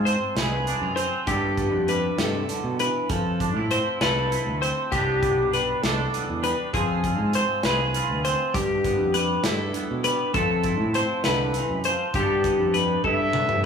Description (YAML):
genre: math rock and midwest emo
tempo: 66 BPM (dotted quarters)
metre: 6/8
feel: straight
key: unclear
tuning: A4 = 440 Hz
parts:
  - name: twangy electric guitar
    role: accompaniment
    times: 0.0-13.7 s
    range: G2 to B4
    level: -28 LUFS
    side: right 7 dB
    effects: vibrato effect
  - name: twelve-string electric guitar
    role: arpeggios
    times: 0.0-13.6 s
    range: G4 to C5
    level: -25 LUFS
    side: left 4 dB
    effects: none
  - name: growling fingered electric bass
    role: bass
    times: 0.0-13.7 s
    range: B1 to B2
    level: -28 LUFS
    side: equal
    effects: overdrive
  - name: modern studio drum kit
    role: drums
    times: 0.1-13.6 s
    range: hi-hat, kick drum, snare drum, toms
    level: -30 LUFS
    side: equal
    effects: none
  - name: warm trumpet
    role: melody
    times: 13.1-13.7 s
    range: E5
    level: -24 LUFS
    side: left 2 dB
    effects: none
room: moderate large studio reverb, RT60 1.2 s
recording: band playing live in one room, small room ambience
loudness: -21 LUFS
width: side -6 dB against mid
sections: 0.0-13.7 A section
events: drum fill 13.1-13.7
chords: 0.0 Fm; 1.3 G13; 3.1 Fmaj7; 4.9 Cmaj9; 6.7 Fm; 8.5 G13; 10.4 Fmaj7; 12.2 G13